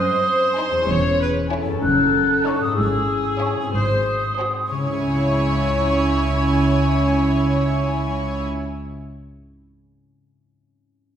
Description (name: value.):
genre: cinematic, playful, whimsical film cue.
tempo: 63 BPM (dotted quarters).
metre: 6/8.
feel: straight.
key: C# minor.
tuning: A4 = 440 Hz.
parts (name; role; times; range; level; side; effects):
mellow hollow concert flute; second line; 0.0-8.4 s; C#6 to F#6; -24 LUFS; left 1 dB; none.
rich studio viola section; accompaniment; 0.0-8.4 s; E4 to C#5; -24 LUFS; equal; none.
concert harp; arpeggios; 0.0-8.7 s; E2 to E5; -25 LUFS; left 3 dB; none.
clear studio cello section; bass; 0.0-8.4 s; E2 to C#3; -24 LUFS; right 2 dB; none.
rich studio violin section; melody; 0.6-8.4 s; G#5 to A5; -32 LUFS; left 1 dB; none.
clear studio violin section; second line; 0.6-8.4 s; D#4 to C#5; -29 LUFS; equal; none.
warm studio double bass section; bass; 0.9-8.4 s; E1 to C#2; -25 LUFS; right 1 dB; none.
room: wet recital hall reverb, RT60 1.5 s.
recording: recorded in a church or concert hall.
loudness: -17 LUFS.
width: side -9 dB against mid.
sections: 0.0-4.7 A section; 4.7-8.5 B section.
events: none.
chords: 0.0 G#7/F#; 0.9 C#m/E; 1.8 D#m7b5/F#; 2.8 C#m/G#; 3.7 G#7; 4.7 C#m.